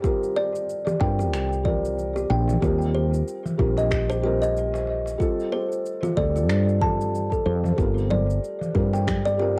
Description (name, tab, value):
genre	organic downtempo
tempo	93 BPM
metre	4/4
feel	swing 57% on 16ths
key	G minor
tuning	A4 = 442 Hz
part	felt-muted upright piano	accompaniment	0.0-9.6 s	G3 to Bb4	-32 LUFS	equal	sidechain pumping, cassette tape, analog delay
part	kalimba	arpeggios	0.0-9.5 s	F4 to A5	-28 LUFS	equal	cassette tape, analog delay
part	woody fretless electric bass	bass	0.0-9.6 s	G1 to G2	-27 LUFS	equal	sidechain pumping
part	electronic cabasa, finger snaps and congas	drums	0.0-9.4 s	none	-36 LUFS	equal	cassette tape
part	electronic kick drum	drums	0.0-9.2 s	none	-29 LUFS	equal	cassette tape
part	darbuka	percussion	0.9-9.0 s	none	-36 LUFS	equal	none
room	light reverb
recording	home recording on cassette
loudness	-24 LUFS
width	mono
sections	0.0-9.6 A section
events	none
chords	0.0 Gm; 2.6 Eb6; 5.2 Dm7; 7.8 Gm